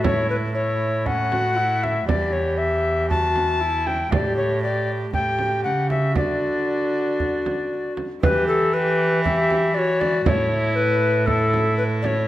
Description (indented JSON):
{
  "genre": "classical, renaissance-style consort dance",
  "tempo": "118 BPM",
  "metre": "4/4",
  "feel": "straight",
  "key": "unclear",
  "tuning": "A4 = 440 Hz",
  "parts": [
    { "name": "tenor recorder", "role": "melody", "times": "0.0-12.3 s", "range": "A4 to A5", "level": "-22 LUFS", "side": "left 2 dB", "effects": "none" },
    { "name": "warm viola", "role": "accompaniment", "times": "0.0-12.3 s", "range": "C#4 to G4", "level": "-25 LUFS", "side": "equal", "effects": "none" },
    { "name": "rich cello", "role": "bass", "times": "0.0-12.3 s", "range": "E2 to E3", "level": "-24 LUFS", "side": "right 2 dB", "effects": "none" },
    { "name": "frame drum", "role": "percussion", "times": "0.0-12.3 s", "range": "none", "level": "-26 LUFS", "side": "right 3 dB", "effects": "none" }
  ],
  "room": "wet recital hall reverb, RT60 1.3 s",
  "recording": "none",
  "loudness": "-19 LUFS",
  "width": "side -14 dB against mid",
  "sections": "0.0-8.2 A section; 8.2-12.3 A section",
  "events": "none",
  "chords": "0.0 A; 2.1 Em; 4.1 A7sus4; 5.1 A7; 6.2 D; 8.2 Em; 10.3 A"
}